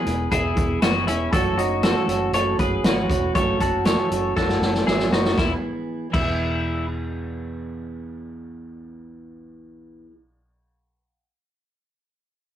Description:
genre	jangly indie pop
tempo	118 BPM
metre	4/4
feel	straight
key	E major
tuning	A4 = 439 Hz
part	fingerpicked steel-string acoustic guitar	accompaniment	0.0-10.2 s	F#2 to G#4	-27 LUFS	right 4 dB	none
part	twelve-string electric guitar	arpeggios	0.0-6.9 s	B3 to C#5	-24 LUFS	left 3 dB	none
part	vintage muted fingered electric bass	bass	0.1-10.1 s	E1 to G#1	-29 LUFS	equal	none
part	vintage drum kit	drums	0.1-6.3 s	crash cymbal, hi-hat, kick drum, snare drum	-23 LUFS	equal	none
room	moderate small room reverb, RT60 0.5 s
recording	rough rehearsal-room recording, warm saturation, faint mains hum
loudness	-19 LUFS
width	side -10 dB against mid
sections	0.0-5.4 A section; 5.4-9.4 B section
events	drum fill 4.4-5.4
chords	0.0 E; 1.3 F#m7; 5.4 E

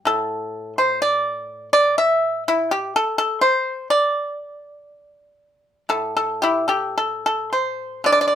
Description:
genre	chinese traditional, Chinese solo plucked strings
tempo	53-64 BPM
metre	4/4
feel	rubato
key	A yu mode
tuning	A4 = 440 Hz
part	pipa	solo	0.0-8.3 s	A2 to E5	-18 LUFS	equal	none
room	moderate studio reverb, RT60 0.5 s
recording	band playing live in one room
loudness	-18 LUFS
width	side -9 dB against mid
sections	0.0-8.0 A section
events	none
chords	none

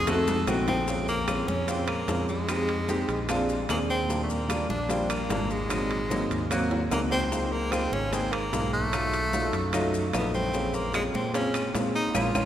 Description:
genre	Afro-Cuban jazz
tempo	149 BPM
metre	4/4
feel	straight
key	Bb minor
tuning	A4 = 439 Hz
part	bright tenor saxophone	melody	0.0-12.5 s	Ab3 to A4	-30 LUFS	equal	none
part	fingered electric bass	bass	0.0-12.5 s	Ab1 to Bb2	-31 LUFS	equal	none
part	warm baby grand piano	accompaniment	0.1-12.5 s	Gb3 to Ab4	-29 LUFS	equal	none
part	bongos	percussion	0.1-12.4 s	none	-38 LUFS	left 4 dB	none
part	claves	percussion	0.1-12.4 s	none	-41 LUFS	left 2 dB	none
part	congas	percussion	0.1-12.4 s	none	-38 LUFS	equal	none
part	maracas	percussion	0.1-12.4 s	none	-42 LUFS	left 5 dB	none
part	timbales	percussion	0.1-12.4 s	none	-36 LUFS	right 3 dB	none
room	wet cathedral reverb, RT60 4.8 s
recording	recorded in a church or concert hall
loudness	-24 LUFS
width	side -11 dB against mid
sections	0.9-12.5 A section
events	drum fill 0.1-0.9, 6.7-7.3; band accent 12.1-12.5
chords	0.1 F7b9; 0.9 Bbm7; 2.5 Fm7; 3.3 Bb7; 4.1 Ebmaj7; 5.7 Ab7; 7.3 Db69; 8.9 B7#11; 10.5 Bbm7

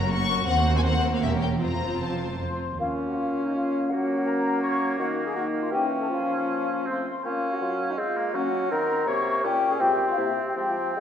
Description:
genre	quick classical-period movement for symphony orchestra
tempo	148-170 BPM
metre	3/4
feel	rubato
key	Bb minor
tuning	A4 = 440 Hz
part	warm studio violin section	melody	0.0-2.4 s	E5 to Db6	-28 LUFS	left 5 dB	none
part	warm studio violin section	second line	0.0-2.6 s	F4 to C5	-34 LUFS	left 3 dB	none
part	warm studio viola section	accompaniment	0.0-2.6 s	F3 to Db4	-31 LUFS	right 3 dB	none
part	dark studio double bass section	bass	0.0-2.6 s	E1 to Eb2	-29 LUFS	right 3 dB	none
part	warm studio cello section	bass	0.0-2.8 s	Eb2 to Gb2	-29 LUFS	right 1 dB	none
part	clear clarinet	second line	2.4-11.0 s	Eb4 to Db5	-33 LUFS	left 1 dB	none
part	mellow large flute ensemble	second line	2.4-11.0 s	Eb5 to Db6	-28 LUFS	left 3 dB	none
part	warm oboe	second line	2.8-11.0 s	Bb3 to Db4	-32 LUFS	right 2 dB	none
part	mellow bassoon	accompaniment	2.8-11.0 s	Bb2 to Bb3	-31 LUFS	right 1 dB	none
part	warm French horn section	sustained chords	2.8-10.7 s	Ab3 to G4	-30 LUFS	left 1 dB	none
room	wet concert hall reverb, RT60 2.1 s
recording	none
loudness	-23 LUFS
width	side -8 dB against mid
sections	0.0-2.8 A section; 2.8-11.0 A section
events	none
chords	0.5 Cm7b5/Eb; 1.2 Edim7; 1.6 F; 2.8 Bbm; 3.9 Gb; 5.0 Eb5; 5.7 Edim7; 6.1 Bbm/F; 6.9 F; 7.2 Bbm; 8.3 Gb; 9.4 Gdim/Bb; 9.8 Fm/C; 10.2 C7

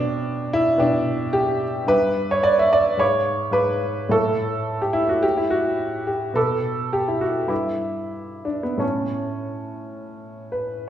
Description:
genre	classical, romantic character piece for solo piano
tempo	86-113 BPM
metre	4/4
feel	rubato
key	unclear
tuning	A4 = 440 Hz
part	warm upright piano	solo	0.0-10.9 s	G2 to E6	-20 LUFS	equal	none
room	wet recital hall reverb, RT60 1.4 s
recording	heard from further back in the room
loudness	-19 LUFS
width	side -10 dB against mid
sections	0.0-10.9 A section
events	none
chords	0.0 G/B; 1.9 Em7/G; 3.0 G#dim7; 4.1 A; 6.4 Bm7; 7.5 Em7/G; 8.8 A

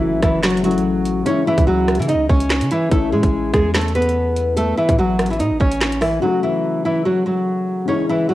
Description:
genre	hip hop, drill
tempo	145 BPM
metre	4/4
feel	half-time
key	unclear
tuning	A4 = 440 Hz
part	nylon-string guitar	melody	0.0-8.3 s	E3 to D#5	-18 LUFS	equal	cassette tape
part	dark grand piano	accompaniment	0.0-8.3 s	C#3 to F#4	-24 LUFS	left 6 dB	cassette tape
part	long sustained 808-style bass	bass	0.0-6.2 s	F#1 to C#3	-23 LUFS	right 1 dB	none
part	drill drum kit	drums	0.2-6.1 s	handclaps, hi-hat, kick drum, rim click, snare drum	-19 LUFS	right 1 dB	none
room	light reverb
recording	home recording on cassette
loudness	-15 LUFS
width	side -15 dB against mid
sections	0.0-6.2 A section; 6.2-8.3 B section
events	none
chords	0.0 F#m; 1.3 C#m; 2.9 A; 6.2 F#m

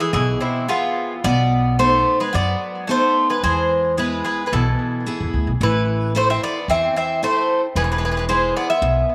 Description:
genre	greek folk, Greek bouzouki band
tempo	110 BPM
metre	4/4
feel	straight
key	unclear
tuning	A4 = 439 Hz
part	Greek bouzouki	melody	0.0-9.1 s	E4 to E5	-22 LUFS	equal	none
part	Greek bouzouki	second line	0.0-9.1 s	C3 to C4	-27 LUFS	equal	tape echo
part	picked steel-string acoustic guitar	accompaniment	0.0-9.1 s	B2 to E5	-28 LUFS	equal	none
part	upright bass	bass	0.1-9.0 s	E1 to F#2	-25 LUFS	equal	none
room	moderate spring reverb, RT60 2.6 s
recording	none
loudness	-19 LUFS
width	mono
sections	0.0-9.1 A section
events	speeding up 0.0-9.1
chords	0.0 E; 1.2 B7; 3.4 E; 5.6 Am; 7.8 E

